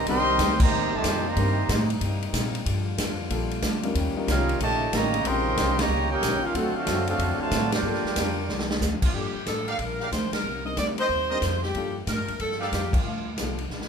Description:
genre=jazz, big band swing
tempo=185 BPM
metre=4/4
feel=swing 64% on 8ths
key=G minor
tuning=A4 = 440 Hz
part: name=warm trumpet section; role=melody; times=0.0-1.9, 4.3-8.8 s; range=C4 to C6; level=-26 LUFS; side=equal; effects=none
part: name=warm trombone section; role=second line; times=0.0-1.9, 4.3-8.8 s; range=Bb2 to G4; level=-30 LUFS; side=right 4 dB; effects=none
part: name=bright trombone section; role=sustained chords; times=0.0-9.1 s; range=C3 to F4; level=-37 LUFS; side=left 2 dB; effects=none
part: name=upright bass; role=bass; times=0.0-13.9 s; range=G1 to Bb2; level=-29 LUFS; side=equal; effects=none
part: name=vintage hollow-body jazz guitar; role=accompaniment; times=0.1-13.9 s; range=G2 to G4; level=-35 LUFS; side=left 4 dB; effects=none
part: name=warm baby grand piano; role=accompaniment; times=0.1-13.6 s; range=F#3 to E#5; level=-33 LUFS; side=left 2 dB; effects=none
part: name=swinging big-band drum kit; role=drums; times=0.1-13.9 s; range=crash cymbal, hi-hat, kick drum, ride cymbal, snare drum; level=-29 LUFS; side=equal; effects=none
part: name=warm saxophone section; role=melody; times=9.0-13.3 s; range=F4 to Eb5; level=-29 LUFS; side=equal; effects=none
part: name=warm trumpet section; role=stabs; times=9.7-13.0 s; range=G4 to F5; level=-33 LUFS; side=right 2 dB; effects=none
room=light reverb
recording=minimal, uncompressed stereo recording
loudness=-23 LUFS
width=side -6 dB against mid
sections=0.0-9.1 A section; 9.1-13.9 B section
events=band accent 0.5, 5.7, 7.7, 10.3, 12.9; drum fill 8.5-8.8, 13.7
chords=0.0 Cm7; 2.7 Gm7; 4.0 Eb7; 6.5 D7#9; 7.8 Gm7; 10.4 Cm7; 11.7 Gm7

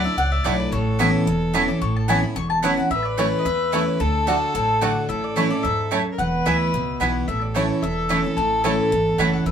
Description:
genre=bluegrass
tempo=220 BPM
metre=4/4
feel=straight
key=A major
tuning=A4 = 440 Hz
part: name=mandolin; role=melody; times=0.0-9.5 s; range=A4 to D6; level=-25 LUFS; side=left 2 dB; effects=none
part: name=warm fiddle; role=second line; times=0.0-9.5 s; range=A4 to D5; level=-27 LUFS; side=left 1 dB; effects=none
part: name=picked steel-string acoustic guitar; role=accompaniment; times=0.0-9.5 s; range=E2 to F#4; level=-23 LUFS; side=equal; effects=none
part: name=upright bass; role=bass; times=0.0-9.5 s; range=E1 to E2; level=-28 LUFS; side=right 1 dB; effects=none
part: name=mandolin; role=stabs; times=0.4-9.3 s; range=A3 to A5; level=-25 LUFS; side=right 5 dB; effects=none
part: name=bluegrass banjo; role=melody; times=0.5-9.3 s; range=A3 to F#4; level=-29 LUFS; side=right 6 dB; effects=none
room=wet small room ambience, RT60 0.5 s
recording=band playing live in one room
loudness=-18 LUFS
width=side -8 dB against mid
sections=0.0-2.9 A section; 2.9-9.5 B section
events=mandolin solo 0.0-2.9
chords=0.0 Dadd9; 0.7 Aadd9; 2.9 A; 4.0 D; 5.1 A; 6.2 E; 7.3 A

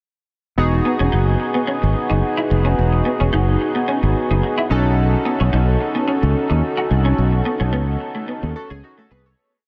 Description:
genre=funk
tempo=109 BPM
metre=4/4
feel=straight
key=E major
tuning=A4 = 440 Hz
part: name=chorused polysynth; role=accompaniment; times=0.6-9.5 s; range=B3 to C#5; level=-23 LUFS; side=equal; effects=none
part: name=fingered electric bass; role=bass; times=0.6-9.3 s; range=E1 to D#2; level=-20 LUFS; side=equal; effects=none
part: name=clean electric guitar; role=riff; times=0.7-9.2 s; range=A3 to F#4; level=-27 LUFS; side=equal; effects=ensemble chorus
room=moderate huge ambient reverb, RT60 7.2 s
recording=dreamy mix soaked in reverb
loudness=-18 LUFS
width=mono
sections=0.6-9.4 verse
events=fade-out 7.2-9.4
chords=0.6 Emaj9; 4.7 B9

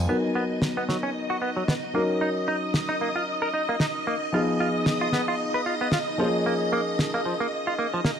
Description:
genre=nu-disco, nu disco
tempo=113 BPM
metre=4/4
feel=swing 56% on 16ths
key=Eb minor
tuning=A4 = 440 Hz
part: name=string machine, full ensemble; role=sustained chords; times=0.0-8.2 s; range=D#5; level=-29 LUFS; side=equal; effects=ensemble chorus
part: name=dark grand piano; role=accompaniment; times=0.1-8.2 s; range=F3 to A#4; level=-28 LUFS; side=left 1 dB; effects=low-pass filter, analog delay
part: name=direct-recorded clean electric guitar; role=riff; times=0.1-8.1 s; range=F3 to Cb5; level=-28 LUFS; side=right 1 dB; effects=wide subtle chorus, low-pass filter
part: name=snare drum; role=drums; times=0.6-8.2 s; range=none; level=-26 LUFS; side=equal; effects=none
room=light reverb, small room reverb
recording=dry, gritty hardware recording, transformer saturation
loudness=-23 LUFS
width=side -8 dB against mid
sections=0.1-8.2 A section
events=filter sweep on grand piano 0.1-8.2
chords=0.1 Bmaj7; 1.9 Ebm7; 4.3 Fm7b5; 6.2 Bbm7

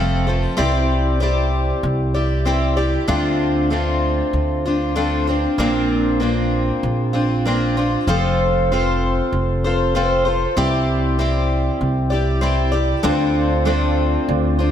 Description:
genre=rock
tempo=96 BPM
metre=4/4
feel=straight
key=D minor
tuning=A4 = 440 Hz
part: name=picked twelve-string acoustic guitar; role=accompaniment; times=0.0-14.7 s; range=Bb2 to D5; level=-18 LUFS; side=left 1 dB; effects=none
part: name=upright bass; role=bass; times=0.0-14.7 s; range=F1 to D2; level=-20 LUFS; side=equal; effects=none
part: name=warm upright piano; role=accompaniment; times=13.0-14.7 s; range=D4 to C5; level=-26 LUFS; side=right 9 dB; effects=ensemble chorus
room=moderate lush hall reverb, RT60 2.7 s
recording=dreamy mix soaked in reverb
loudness=-16 LUFS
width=side -9 dB against mid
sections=0.0-13.1 A section; 13.1-14.7 B section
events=none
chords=0.0 F; 0.6 Cadd9; 3.1 Dm7; 5.6 Bbadd9; 8.1 F; 10.6 Cadd9; 13.1 Dm7

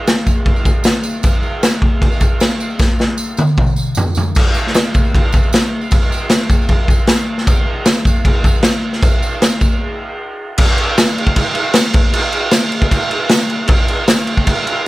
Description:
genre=rock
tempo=154 BPM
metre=4/4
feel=straight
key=none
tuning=none
part: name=raw garage drum kit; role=drums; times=0.1-14.8 s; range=crash cymbal, kick drum, snare drum, toms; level=-12 LUFS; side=equal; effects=none
part: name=tambourine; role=percussion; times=0.1-14.2 s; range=none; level=-26 LUFS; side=right 2 dB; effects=none
room=little or no reverb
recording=none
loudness=-12 LUFS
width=side -18 dB against mid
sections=0.0-4.4 A section; 4.4-10.6 B section; 10.6-14.9 C section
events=drum fill 2.8-4.4; break 9.8-10.6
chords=none

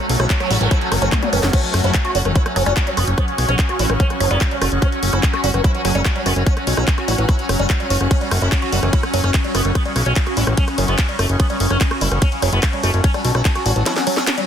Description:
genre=psychedelic trance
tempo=146 BPM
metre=4/4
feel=straight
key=F# minor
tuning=A4 = 438 Hz
part: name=sitar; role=melody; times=0.0-14.4 s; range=C#3 to F#4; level=-26 LUFS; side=equal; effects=phaser, sidechain pumping, digital delay
part: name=overtone-sweeping drone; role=sustained chords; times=0.0-14.5 s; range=F#3 to C#4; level=-26 LUFS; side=left 1 dB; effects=chorus, built-in reverb, phaser, sidechain pumping
part: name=noise sweep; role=sound effects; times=0.1-1.5 s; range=none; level=-29 LUFS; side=right 4 dB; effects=none
part: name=bright studio string section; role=texture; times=0.0-14.5 s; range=C#4 to F#6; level=-27 LUFS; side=left 1 dB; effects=sidechain pumping
part: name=fat analog bass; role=bass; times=0.1-13.8 s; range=F#1 to B1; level=-18 LUFS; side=equal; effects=none
part: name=garage drum kit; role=drums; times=0.1-14.5 s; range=crash cymbal, handclaps, hi-hat, ride cymbal, rim click, snare drum, toms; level=-23 LUFS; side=left 1 dB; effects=none
part: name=woody wave-folded pluck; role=riff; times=0.2-14.4 s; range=E3 to F#4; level=-25 LUFS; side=moving between equal and right 7 dB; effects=chorus, auto-pan, sidechain pumping, digital delay
part: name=electronic kick drum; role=drums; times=0.3-13.5 s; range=none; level=-17 LUFS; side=equal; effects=none
room=digital ambience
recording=dense, heavily limited modern master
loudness=-15 LUFS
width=side -8 dB against mid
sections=0.0-14.5 A section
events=noise sweep 0.1-1.5; drum fill 1.1-1.5, 13.9-14.5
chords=0.0 F#5

